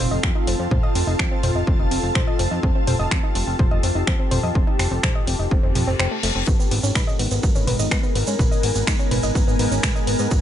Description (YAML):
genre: melodic techno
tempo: 125 BPM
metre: 4/4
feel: straight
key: unclear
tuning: A4 = 440 Hz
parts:
  - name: deep dark ambient pad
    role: sustained chords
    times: 0.0-10.4 s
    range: Ab3 to Bb4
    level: -28 LUFS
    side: left 1 dB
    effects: chorus, built-in reverb, sidechain pumping
  - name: woody wave-folded pluck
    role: arpeggios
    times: 0.0-10.4 s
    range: A3 to Eb6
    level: -29 LUFS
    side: equal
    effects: chorus, cassette tape, sidechain pumping, ping-pong delay
  - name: fat analog bass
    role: bass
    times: 0.0-10.4 s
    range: F1 to Ab2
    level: -24 LUFS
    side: equal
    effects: sidechain pumping
  - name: ethereal airy pad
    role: texture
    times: 0.0-10.4 s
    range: Cb4 to A5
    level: -29 LUFS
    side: left 1 dB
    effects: ensemble chorus, built-in reverb, sidechain pumping
  - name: electronic kick drum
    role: drums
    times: 0.2-10.4 s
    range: none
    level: -20 LUFS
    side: equal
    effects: overdrive, studio reverb
  - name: techno drum kit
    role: drums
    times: 0.2-10.2 s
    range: finger snaps, hi-hat, toms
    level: -25 LUFS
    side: right 1 dB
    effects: overdrive, sidechain pumping on hats, studio reverb, sidechain pumping on toms
  - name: reverse cymbal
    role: sound effects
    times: 5.7-6.5 s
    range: none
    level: -30 LUFS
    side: left 6 dB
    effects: none
  - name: tube shaker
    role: percussion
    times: 6.5-10.4 s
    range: none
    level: -32 LUFS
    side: right 6 dB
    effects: none
room: little or no reverb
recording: nothing above 10.6 kHz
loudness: -18 LUFS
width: side -10 dB against mid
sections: 0.0-10.4 A section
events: reverse cymbal 5.7-6.5; kick drops out 6.0-6.5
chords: 0.0 F; 6.5 Abmadd9